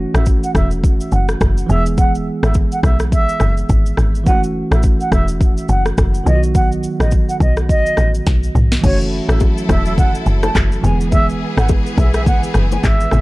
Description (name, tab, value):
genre	afrobeats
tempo	105 BPM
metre	4/4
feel	swing 58% on 16ths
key	F# dorian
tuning	A4 = 441 Hz
part	bell-like tine electric piano	accompaniment	0.0-13.2 s	D#3 to G#4	-22 LUFS	right 2 dB	none
part	woody log drum bass	bass	0.0-13.2 s	E1 to B1	-16 LUFS	equal	none
part	concert flute	melody	0.1-13.2 s	C#5 to A5	-22 LUFS	right 2 dB	digital delay
part	afro-pop drum kit	drums	0.1-13.2 s	crash cymbal, handclaps, kick drum, rim click, shaker, snare drum, toms	-16 LUFS	equal	none
part	clear studio string section	sustained chords	8.8-13.2 s	E3 to A4	-26 LUFS	left 2 dB	sidechain pumping
part	congas and bongos	percussion	8.8-13.2 s	none	-24 LUFS	left 4 dB	none
room	little or no reverb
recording	dark, warm production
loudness	-13 LUFS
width	side -20 dB against mid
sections	0.0-8.8 A section; 8.8-13.2 B section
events	drum fill 8.3-8.8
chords	0.0 F#m7; 1.7 E; 4.3 F#m7; 6.3 B; 8.8 F#m7; 10.8 E